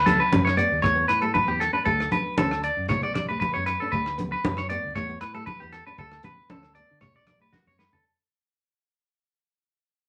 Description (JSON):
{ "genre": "highlife guitar band", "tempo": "117 BPM", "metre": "4/4", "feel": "swing 54% on 16ths", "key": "D major", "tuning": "A4 = 440 Hz", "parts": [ { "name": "clean electric guitar", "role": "arpeggios", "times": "0.0-8.0 s", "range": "F#4 to D5", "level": "-27 LUFS", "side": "equal", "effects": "none" }, { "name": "modern bright fingered electric bass", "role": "bass", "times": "0.0-7.9 s", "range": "B1 to D3", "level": "-34 LUFS", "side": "equal", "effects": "none" }, { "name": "fingerpicked steel-string acoustic guitar", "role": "accompaniment", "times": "0.1-8.0 s", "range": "A3 to D4", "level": "-35 LUFS", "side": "equal", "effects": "none" }, { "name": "warm soul drum kit", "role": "drums", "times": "0.1-8.0 s", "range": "hi-hat, kick drum, rim click, snare drum, toms", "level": "-36 LUFS", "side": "equal", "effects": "none" }, { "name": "congas", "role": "percussion", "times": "0.1-7.9 s", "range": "none", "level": "-30 LUFS", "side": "equal", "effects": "none" } ], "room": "wet studio reverb, RT60 0.6 s", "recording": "vinyl crackle", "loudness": "-24 LUFS", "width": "mono", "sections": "0.0-8.0 A section", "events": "fade-out 0.0-8.0; drum fill 7.5-8.0", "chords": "0.0 D5; 0.8 E5; 1.9 D5; 2.9 Bm; 3.9 D5; 5.0 E5; 6.0 D5; 7.0 Bm", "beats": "0.33 0.84 1.35 | 1.86 2.38 2.89 3.41 | 3.92 4.43 4.95 5.46 | 5.98 6.49 7.01 7.52" }